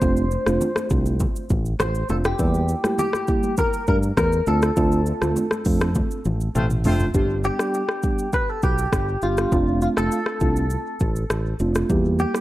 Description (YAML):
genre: afrobeats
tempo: 101 BPM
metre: 4/4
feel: straight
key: D minor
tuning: A4 = 438 Hz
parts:
  - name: direct-recorded clean electric guitar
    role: melody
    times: 0.0-12.4 s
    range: F4 to C5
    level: -26 LUFS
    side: left 1 dB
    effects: lush chorus, tape echo
  - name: mellow tine electric piano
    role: accompaniment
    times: 0.0-12.4 s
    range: G3 to G4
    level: -24 LUFS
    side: right 2 dB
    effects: phaser, tape echo
  - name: fingered electric bass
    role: bass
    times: 0.0-12.2 s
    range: F1 to G2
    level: -23 LUFS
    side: equal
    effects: none
  - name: afro-pop drum kit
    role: drums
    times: 0.0-12.4 s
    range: hi-hat, kick drum, rim click, shaker, toms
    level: -24 LUFS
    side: equal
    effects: none
  - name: congas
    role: percussion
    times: 0.5-7.0 s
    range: none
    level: -31 LUFS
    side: left 1 dB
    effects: none
  - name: clear horn section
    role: second line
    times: 6.6-7.0 s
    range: A3 to C5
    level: -29 LUFS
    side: left 2 dB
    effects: tape echo
room: digital ambience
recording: echo-heavy mix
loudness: -19 LUFS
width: side -16 dB against mid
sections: 0.0-7.1 A section; 7.1-12.4 B section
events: band accent 4.8-7.1; drum fill 6.0-7.1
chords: 0.0 Dm7/F; 2.4 Edim; 4.5 Dm7; 7.1 G; 9.5 Dm7/F; 11.9 Edim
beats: | 0.02 0.61 1.21 1.80 | 2.39 2.99 3.58 4.17 | 4.77 5.36 5.96 6.55 | 7.14 7.74 8.33 8.93 | 9.52 10.12 10.71 11.30 | 11.90